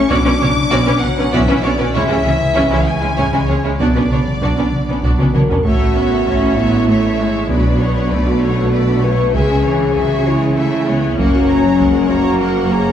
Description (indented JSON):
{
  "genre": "cinematic, hybrid orchestral and electronic film score",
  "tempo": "65 BPM (dotted quarters)",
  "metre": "6/8",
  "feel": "straight",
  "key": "B dorian",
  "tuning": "A4 = 438 Hz",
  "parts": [
    { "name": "rich symphonic violin section", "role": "melody", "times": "0.0-12.9 s", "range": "C#5 to D6", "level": "-24 LUFS", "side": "left 2 dB", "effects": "none" },
    { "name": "dark French horn section", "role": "sustained chords", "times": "0.0-12.9 s", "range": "C#3 to B4", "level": "-19 LUFS", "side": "left 2 dB", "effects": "none" },
    { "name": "harp-like synth pluck", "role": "arpeggios", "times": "0.0-12.8 s", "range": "C#3 to B4", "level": "-22 LUFS", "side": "right 2 dB", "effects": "chorus, digital delay" },
    { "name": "saturated sub bass", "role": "bass", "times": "0.0-12.9 s", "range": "F#1 to C#2", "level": "-25 LUFS", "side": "equal", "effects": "none" },
    { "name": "rich studio violin section", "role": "second line", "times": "0.1-12.9 s", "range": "G#3 to A#5", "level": "-22 LUFS", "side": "equal", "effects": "none" },
    { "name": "rich symphonic viola section", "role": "accompaniment", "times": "0.1-12.9 s", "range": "E3 to D4", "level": "-21 LUFS", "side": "right 1 dB", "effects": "none" },
    { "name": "clear symphonic double bass section", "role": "bass", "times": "0.1-12.9 s", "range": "F#1 to C#2", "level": "-23 LUFS", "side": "right 2 dB", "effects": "none" },
    { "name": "warm studio cello section", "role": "bass", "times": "0.1-12.9 s", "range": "F#2 to C#3", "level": "-22 LUFS", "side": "right 2 dB", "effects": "none" },
    { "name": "taiko ensemble", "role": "drums", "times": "0.1-12.4 s", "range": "none", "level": "-20 LUFS", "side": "equal", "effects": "none" }
  ],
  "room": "wet concert hall reverb, RT60 2.1 s",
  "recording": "none",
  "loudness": "-12 LUFS",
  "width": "side -9 dB against mid",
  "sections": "0.0-5.6 A section; 5.6-12.9 B section",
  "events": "drum fill 5.2-5.6",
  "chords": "0.1 Bmadd9; 2.0 C#m; 3.8 Bmadd9; 5.6 A; 7.5 Bmadd9; 9.3 C#m; 11.2 F#"
}